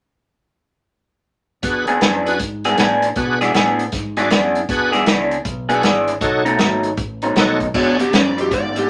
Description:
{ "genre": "electric blues shuffle", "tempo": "157 BPM", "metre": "4/4", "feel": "swing 64% on 8ths", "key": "E mixolydian", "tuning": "A4 = 440 Hz", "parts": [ { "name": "bright tonewheel organ", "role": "accompaniment", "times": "1.6-8.0 s", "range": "D4 to D5", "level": "-22 LUFS", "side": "equal", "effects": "slow rotary speaker, overdrive, chorus vibrato" }, { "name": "fingered electric bass", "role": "bass", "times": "1.6-8.9 s", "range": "G#1 to B2", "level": "-30 LUFS", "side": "equal", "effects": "none" }, { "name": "vintage drum kit", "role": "drums", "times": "1.6-8.8 s", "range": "crash cymbal, hi-hat, kick drum, snare drum", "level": "-22 LUFS", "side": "equal", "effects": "none" }, { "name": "electric guitar through a small old amp", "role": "riff", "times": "1.9-8.9 s", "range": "E2 to G#4", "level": "-20 LUFS", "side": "equal", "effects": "phaser" }, { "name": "overdriven slide guitar", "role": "melody", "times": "7.8-8.9 s", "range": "G4 to D5", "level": "-23 LUFS", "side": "equal", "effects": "none" } ], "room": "wet small room ambience, RT60 0.5 s", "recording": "none", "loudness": "-17 LUFS", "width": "mono", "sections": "1.6-7.7 A section; 7.7-8.9 B section", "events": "none", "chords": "1.6 E7; 6.2 B7; 7.7 E13" }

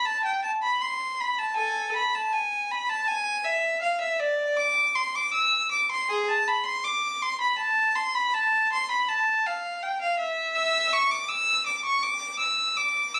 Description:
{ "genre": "classical, baroque-style suite movement for unaccompanied violin", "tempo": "80 BPM", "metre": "4/4", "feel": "rubato", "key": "A minor", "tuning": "A4 = 440 Hz", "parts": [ { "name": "clear violin", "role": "solo", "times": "0.0-13.2 s", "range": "G#4 to E6", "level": "-25 LUFS", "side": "equal", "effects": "none" } ], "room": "light reverb", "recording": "recorded on a phone in the room, club reverb, compression", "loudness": "-25 LUFS", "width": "mono", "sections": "0.0-13.2 A section", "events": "none", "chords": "none" }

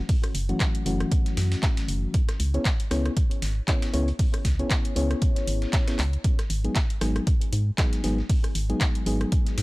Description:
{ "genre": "deep house", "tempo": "117 BPM", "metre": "4/4", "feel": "swing 56% on 16ths", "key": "unclear", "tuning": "A4 = 440 Hz", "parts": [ { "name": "dusty soul sampler-style drum kit", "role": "drums", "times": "0.1-9.6 s", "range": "hi-hat, snare drum", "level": "-40 LUFS", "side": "right 1 dB", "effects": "sidechain pumping on hats, high-pass filter on hats, small room ambience, high-pass filter on snare, high-pass filter on room" }, { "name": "electronic kick drum", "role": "drums", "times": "0.1-9.4 s", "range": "none", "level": "-24 LUFS", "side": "equal", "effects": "small room ambience" }, { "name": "house drum kit", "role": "drums", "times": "0.1-9.6 s", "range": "handclaps, hi-hat, rim click", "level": "-32 LUFS", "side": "equal", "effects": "small room ambience" }, { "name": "organ-like FM bass", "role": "bass", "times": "0.3-9.6 s", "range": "F#1 to G#2", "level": "-25 LUFS", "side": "equal", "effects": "sidechain pumping" }, { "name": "mellow FM electric piano", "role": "stabs", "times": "0.5-9.6 s", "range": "E3 to C#5", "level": "-30 LUFS", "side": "left 1 dB", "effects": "chorus, sidechain pumping, analog delay" } ], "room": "little or no reverb", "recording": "dry, gritty hardware recording, transformer saturation", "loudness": "-22 LUFS", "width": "side -21 dB against mid", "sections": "0.0-9.6 A section", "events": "drum fill 6.0", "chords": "0.0 F#m7; 2.1 C#m7; 6.2 G#m7" }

